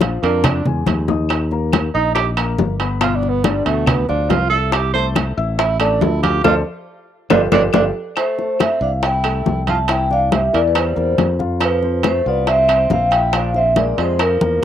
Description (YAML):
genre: Afro-Cuban jazz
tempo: 140 BPM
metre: 4/4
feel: straight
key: C major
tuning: A4 = 440 Hz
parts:
  - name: warm concert grand piano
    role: accompaniment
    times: 0.0-14.6 s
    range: B2 to F6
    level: -25 LUFS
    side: left 8 dB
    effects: plate reverb
  - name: modern bright fingered electric bass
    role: bass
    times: 0.0-14.6 s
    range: G1 to F2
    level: -21 LUFS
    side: equal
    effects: none
  - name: bongos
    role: percussion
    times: 0.0-14.6 s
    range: none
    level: -22 LUFS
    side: left 10 dB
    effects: none
  - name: congas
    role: percussion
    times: 0.0-14.5 s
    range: none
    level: -22 LUFS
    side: equal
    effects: none
  - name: timbales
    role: percussion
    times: 0.0-14.4 s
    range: none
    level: -23 LUFS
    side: right 10 dB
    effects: none
  - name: breathy tenor saxophone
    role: second line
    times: 0.2-14.6 s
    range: F3 to C5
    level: -21 LUFS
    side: right 6 dB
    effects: plate reverb
  - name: claves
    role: percussion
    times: 0.4-14.4 s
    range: none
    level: -30 LUFS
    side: left 9 dB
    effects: none
  - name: vibraphone with soft mallets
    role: melody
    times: 8.2-14.6 s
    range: Bb4 to A5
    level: -17 LUFS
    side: equal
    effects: cassette tape, plate reverb
room: moderate booth ambience, RT60 0.2 s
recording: home recording on cassette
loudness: -14 LUFS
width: side -10 dB against mid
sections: 0.0-8.2 A section; 8.2-14.6 B section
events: tenor saxophone solo 0.0-8.2; drum fill 0.9-1.3, 7.5-8.2, 14.4; band accent 6.5-8.2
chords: 0.0 Bb7; 1.3 Eb; 3.0 G7; 4.7 C6; 5.6 A5; 6.5 D7(no3); 7.3 G7; 8.2 C6; 9.9 C7; 11.6 F5; 13.3 Bb5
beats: 0.01 0.44 0.87 | 1.30 1.73 2.16 2.59 | 3.02 3.45 3.88 4.31 | 4.74 5.17 5.59 6.02 | 6.45 6.88 7.31 7.74 | 8.17 8.60 9.03 9.46 | 9.89 10.32 10.75 11.18 | 11.62 12.04 12.48 12.91 | 13.34 13.77 14.20 14.63